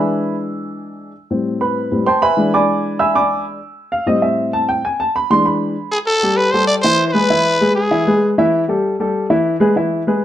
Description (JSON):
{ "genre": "latin", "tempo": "195 BPM", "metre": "4/4", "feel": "straight", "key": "A minor", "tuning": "A4 = 440 Hz", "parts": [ { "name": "dark upright piano", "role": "accompaniment", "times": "0.0-10.2 s", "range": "A2 to E6", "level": "-15 LUFS", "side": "equal", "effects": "none" }, { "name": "growling trumpet", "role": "melody", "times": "5.9-8.3 s", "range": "G#4 to D5", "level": "-15 LUFS", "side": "equal", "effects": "none" } ], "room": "moderate large studio reverb, RT60 0.9 s", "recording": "dark, warm production", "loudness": "-14 LUFS", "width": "side -11 dB against mid", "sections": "0.0-6.1 A section; 6.1-10.2 B section", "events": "upright piano solo 0.0-6.1", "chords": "0.0 E7; 1.1 Am7; 2.4 E7; 3.6 Am7; 4.8 E7; 6.1 A5; 7.3 E; 8.5 A5" }